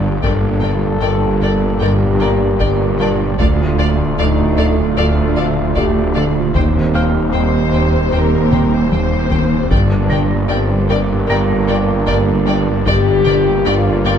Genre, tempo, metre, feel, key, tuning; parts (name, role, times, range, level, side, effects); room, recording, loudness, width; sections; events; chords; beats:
cinematic, hybrid orchestral and electronic film score; 76 BPM; 4/4; straight; G minor; A4 = 441 Hz
hollow soft pad; sustained chords; 0.0-14.2 s; Bb2 to D5; -25 LUFS; right 2 dB; chorus
mellow French horn section; sustained chords; 0.0-14.2 s; C4 to A4; -21 LUFS; left 5 dB
warm trombone section; sustained chords; 0.0-14.2 s; F3 to C4; -26 LUFS; right 3 dB
round analog bass; riff; 0.0-14.2 s; D2 to G3; -21 LUFS; left 3 dB
mellow tuba; bass; 0.0-14.2 s; G1 to Eb2; -21 LUFS; right 4 dB
rich symphonic cello section; bass; 0.0-14.2 s; D2 to G2; -21 LUFS; right 2 dB
rich symphonic double bass section; bass; 0.0-14.2 s; G1 to Eb2; -22 LUFS; right 4 dB
snarling distorted saw bass; bass; 0.0-14.2 s; D1 to G1; -23 LUFS; equal; distortion
felt-muted upright piano; texture; 0.0-14.2 s; F5 to Bb6; -30 LUFS; left 1 dB; ping-pong delay
warm symphonic violin section; melody; 0.2-14.1 s; F5 to G5; -30 LUFS; left 6 dB
warm chamber violin section; second line; 0.2-14.1 s; Bb4 to D5; -24 LUFS; left 4 dB
warm symphonic viola section; accompaniment; 0.2-14.1 s; A3 to C5; -28 LUFS; equal
taiko ensemble; drums; 0.2-13.6 s; -21 LUFS; equal
moderate scoring stage reverb, RT60 1.9 s; dark, warm production; -12 LUFS; side -8 dB against mid
0.0-14.2 A section
drum fill 8.5-9.7
0.0 Gm; 3.4 Dm; 6.6 Cm/Eb; 9.7 Gm
| 0.24 1.03 1.82 2.61 | 3.40 4.19 4.97 5.76 | 6.55 7.34 8.13 8.92 | 9.71 10.50 11.29 12.08 | 12.87 13.66